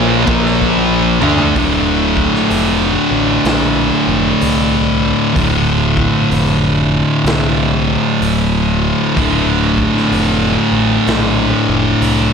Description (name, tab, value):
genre	stoner and doom metal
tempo	63 BPM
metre	4/4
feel	swing 64% on 8ths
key	D minor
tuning	A4 = 440 Hz
part	thick fuzz guitar	riff	0.0-12.3 s	D2 to D4	-15 LUFS	left 10 dB	distortion
part	thick fuzz guitar	riff	0.0-12.3 s	D2 to D4	-15 LUFS	right 10 dB	distortion
part	growling picked electric bass	bass	0.0-12.3 s	D1 to D2	-20 LUFS	equal	overdrive
part	raw garage drum kit	drums	0.3-12.3 s	crash cymbal, hi-hat, kick drum, snare drum, toms	-22 LUFS	equal	none
room	light reverb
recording	none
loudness	-11 LUFS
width	side -6 dB against mid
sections	0.0-1.6 A section; 1.6-12.3 B section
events	drum fill 0.6-1.6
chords	0.0 Bb5; 1.6 Dm